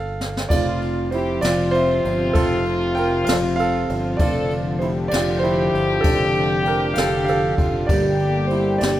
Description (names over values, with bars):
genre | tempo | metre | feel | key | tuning
six-eight pop ballad | 65 BPM (dotted quarters) | 6/8 | straight | unclear | A4 = 440 Hz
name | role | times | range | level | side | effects
warm grand piano | accompaniment | 0.0-9.0 s | F3 to G5 | -22 LUFS | right 3 dB | none
fingered electric bass | bass | 0.0-9.0 s | F1 to G1 | -26 LUFS | equal | none
jazz brush drum kit | drums | 0.2-9.0 s | crash cymbal, kick drum, ride cymbal, snare drum | -25 LUFS | left 1 dB | none
muted French horn section | second line | 0.5-9.0 s | F4 to A4 | -23 LUFS | left 2 dB | none
warm analog pad | sustained chords | 0.9-9.0 s | C3 to G4 | -25 LUFS | left 1 dB | chorus
room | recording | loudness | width
light reverb, small room ambience | rough home demo mix | -17 LUFS | side -13 dB against mid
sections
0.5-9.0 A section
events
drum fill 0.0-0.5; grand piano solo 0.5-9.0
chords
0.5 F